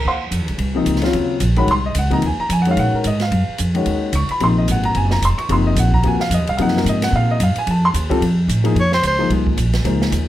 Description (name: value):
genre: modal jazz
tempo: 220 BPM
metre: 4/4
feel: swing 58% on 8ths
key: Eb dorian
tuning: A4 = 441 Hz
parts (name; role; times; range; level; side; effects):
- warm baby grand piano; accompaniment; 0.0-10.3 s; C3 to Db6; -19 LUFS; left 2 dB; none
- upright bass; bass; 0.0-10.3 s; F1 to Bb2; -18 LUFS; right 1 dB; none
- open jazz drum kit; drums; 0.3-10.2 s; hi-hat, kick drum, ride cymbal, snare drum; -26 LUFS; right 2 dB; none
- clear soprano saxophone; melody; 8.8-9.3 s; C5 to Db5; -18 LUFS; equal; none
room: moderate club reverb, RT60 0.8 s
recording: none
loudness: -15 LUFS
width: side -13 dB against mid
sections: 0.0-8.8 A section; 8.8-10.3 A section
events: soprano saxophone solo 8.8-10.3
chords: 0.0 Ebm69; 7.7 F7; 8.8 Bbm9